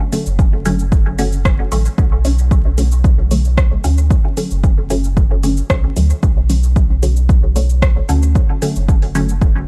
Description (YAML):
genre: dub techno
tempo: 113 BPM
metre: 4/4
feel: straight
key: B minor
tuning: A4 = 440 Hz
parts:
  - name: filtered dub chord stab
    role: stabs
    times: 0.1-9.3 s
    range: D3 to C#4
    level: -24 LUFS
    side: equal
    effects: phaser, sidechain pumping, dub echo
  - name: deep house drum kit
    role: drums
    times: 0.1-9.5 s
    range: hi-hat, rim click, shaker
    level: -28 LUFS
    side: equal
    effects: overdrive, studio ambience, dub echo
  - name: soft dub sub bass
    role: bass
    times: 0.3-9.7 s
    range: F#1 to D2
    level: -18 LUFS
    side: equal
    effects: sidechain pumping
  - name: electronic kick drum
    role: drums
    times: 0.4-9.5 s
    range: none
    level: -16 LUFS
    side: equal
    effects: overdrive, studio ambience
room: little or no reverb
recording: dry, gritty hardware recording, vinyl crackle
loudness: -14 LUFS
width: mono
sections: 0.0-9.7 A section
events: none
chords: 0.0 Bm7